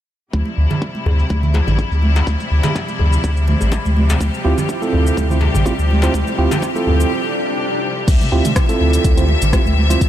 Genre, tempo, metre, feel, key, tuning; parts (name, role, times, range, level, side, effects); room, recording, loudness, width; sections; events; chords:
afro house; 124 BPM; 4/4; swing 54% on 16ths; D minor; A4 = 440 Hz
clear symphonic string section; sustained chords; 0.3-10.1 s; C3 to E5; -22 LUFS; left 2 dB; sidechain pumping
warm sub bass; bass; 0.3-10.1 s; A1 to D2; -16 LUFS; equal; sidechain pumping
deep house drum kit; drums; 0.3-10.1 s; crash cymbal, hi-hat, rim click, shaker, toms; -26 LUFS; left 1 dB; low-pass filter on perc, low-pass filter on hats, low-pass filter on cymbals, low-pass filter on toms, low-pass filter on snare
electronic kick drum; drums; 0.3-10.1 s; -18 LUFS; equal; high-pass filter on kick
congas; percussion; 0.3-10.0 s; -24 LUFS; right 3 dB
djembe; percussion; 0.7-7.0 s; -27 LUFS; left 4 dB
tine electric piano; stabs; 4.4-10.0 s; C4 to C5; -20 LUFS; right 4 dB; sidechain pumping, low-pass filter, diffuse ambient delay
swell; sound effects; 7.3-8.1 s; -28 LUFS; left 2 dB
light reverb, digital ambience; -14 LUFS; side -12 dB against mid
0.3-8.1 A section; 8.1-10.1 B section
break 7.1-8.1; swell 7.3-8.1; filter sweep on tine electric piano 8.1-10.1
0.3 Dm11